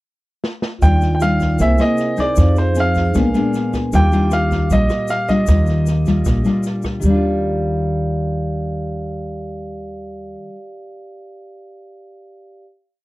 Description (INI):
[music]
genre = bossa nova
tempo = 155 BPM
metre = 4/4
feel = straight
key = Eb major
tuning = A4 = 440 Hz
[part]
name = open jazz drum kit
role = drums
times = 0.4-6.9 s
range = kick drum, rim click, snare drum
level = -24 LUFS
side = equal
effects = none
[part]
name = clear baby grand piano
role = melody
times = 0.8-6.6 s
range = C5 to G5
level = -21 LUFS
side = equal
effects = none
[part]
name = nylon-string guitar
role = accompaniment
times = 0.8-10.6 s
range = Bb2 to G#4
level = -20 LUFS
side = left 1 dB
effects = none
[part]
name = vibraphone with soft mallets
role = accompaniment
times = 0.8-12.7 s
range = D4 to D6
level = -26 LUFS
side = right 2 dB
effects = none
[part]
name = upright bass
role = bass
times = 0.8-10.3 s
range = Bb1 to F2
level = -18 LUFS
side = equal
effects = none
[part]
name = tube shaker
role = percussion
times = 0.8-7.1 s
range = none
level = -39 LUFS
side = left 13 dB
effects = none
[sound]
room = small room ambience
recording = dry, close 1970s-style studio recording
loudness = -15 LUFS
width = side -18 dB against mid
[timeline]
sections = 0.0-0.8 pickup bar; 0.8-7.0 A section; 7.0-10.1 final chord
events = drum fill 0.4-0.8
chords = 0.0 N.C.; 0.8 Ebmaj9; 1.6 C7alt; 2.4 Fm7; 3.2 Bb7b9; 3.9 Ebmaj9